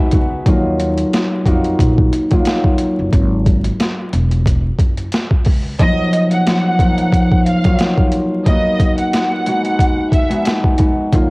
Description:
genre	hip hop, boom-bap hip-hop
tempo	90 BPM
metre	4/4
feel	swing 56% on 16ths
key	Eb minor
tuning	A4 = 443 Hz
part	concert harp	accompaniment	0.0-11.3 s	F3 to Gb4	-16 LUFS	equal	cassette tape, high-pass filter, low-pass filter
part	upright bass	bass	0.1-5.7, 11.1-11.3 s	E1 to F2	-18 LUFS	equal	tube saturation
part	boom bap sampler-style drum kit	drums	0.1-11.3 s	hi-hat, kick drum, snare drum	-15 LUFS	equal	overdrive, cassette tape
part	warm studio violin section	melody	5.8-10.4 s	Eb5 to Gb5	-20 LUFS	right 1 dB	high-pass filter, low-pass filter, analog delay
room	small room ambience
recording	home recording on cassette, vinyl crackle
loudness	-12 LUFS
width	side -26 dB against mid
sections	0.0-11.3 A section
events	none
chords	0.5 Ebmadd9; 3.1 N.C.; 4.1 Esus2; 5.8 Ebmadd9; 8.5 Bmaj7/A#; 9.5 Abm7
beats	| 0.46 1.13 1.79 2.46 | 3.13 3.79 4.46 5.13 | 5.79 6.46 7.13 7.79 | 8.46 9.13 9.79 10.46 | 11.13

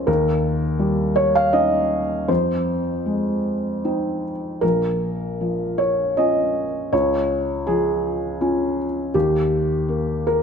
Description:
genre	neoclassical minimalist piano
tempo	79 BPM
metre	3/4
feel	uneven beats, rubato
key	Bb dorian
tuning	A4 = 439 Hz
part	felt-muted upright piano	solo	0.0-10.4 s	Bb1 to F5	-19 LUFS	equal	none
room	light reverb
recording	none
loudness	-19 LUFS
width	side -6 dB against mid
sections	0.0-10.4 A section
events	none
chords	0.1 Eb7; 2.3 Fm7; 4.6 Bbm; 6.9 Db; 9.1 Eb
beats	| 0.07 0.79 1.53 | 2.29 3.06 3.84 | 4.62 5.41 6.18 | 6.92 7.67 8.41 | 9.14 9.89

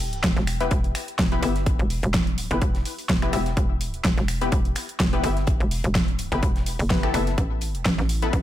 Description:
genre	bass house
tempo	126 BPM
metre	4/4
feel	swing 55% on 16ths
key	E minor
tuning	A4 = 439 Hz
part	hollow knocking FM bass	bass	0.0-8.4 s	E1 to A1	-26 LUFS	equal	sidechain pumping
part	big-room dance drum kit	drums	0.0-8.4 s	finger snaps, hi-hat, snare drum	-27 LUFS	right 1 dB	overdrive, small room ambience
part	deep reggae drum kit	drums	0.2-8.4 s	hi-hat, snare drum	-40 LUFS	left 4 dB	none
part	electronic kick drum	drums	0.2-8.4 s	none	-24 LUFS	equal	overdrive, small room ambience
part	orchestra-hit-like synth stab	stabs	0.6-8.3 s	B3 to E5	-29 LUFS	left 4 dB	built-in reverb, sidechain pumping, ping-pong delay
part	sweeping resonant pad	sustained chords	7.4-8.4 s	A3 to B4	-47 LUFS	equal	none
room	digital ambience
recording	none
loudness	-21 LUFS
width	side -12 dB against mid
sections	0.0-8.4 A section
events	none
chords	0.0 Em; 7.4 Asus2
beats	0.24 0.71 1.19 | 1.66 2.14 2.62 3.09 | 3.57 4.04 4.52 5.00 | 5.47 5.95 6.43 6.90 | 7.38 7.86 8.33

